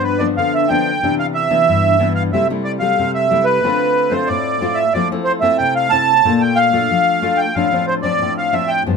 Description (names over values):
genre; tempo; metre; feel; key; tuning
samba; 92 BPM; 4/4; straight; unclear; A4 = 442 Hz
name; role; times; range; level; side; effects
accordion; melody; 0.0-8.8 s; B4 to A5; -15 LUFS; right 2 dB; light tremolo tuning
nylon-string guitar; accompaniment; 0.0-9.0 s; G2 to F4; -18 LUFS; left 4 dB; none
room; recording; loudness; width
wet small room reverb, RT60 0.5 s; minimal, uncompressed stereo recording; -14 LUFS; side -5 dB against mid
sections
0.0-9.0 A section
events
none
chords
0.0 G7; 1.0 Cmaj9; 2.3 Am7/C; 3.6 Dm7; 4.9 Fmaj7; 6.3 Bbmaj7; 7.6 Dm7/A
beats
0.38 | 1.03 1.68 2.34 2.99 | 3.64 4.29 4.95 5.60 | 6.25 6.91 7.56 8.21 | 8.87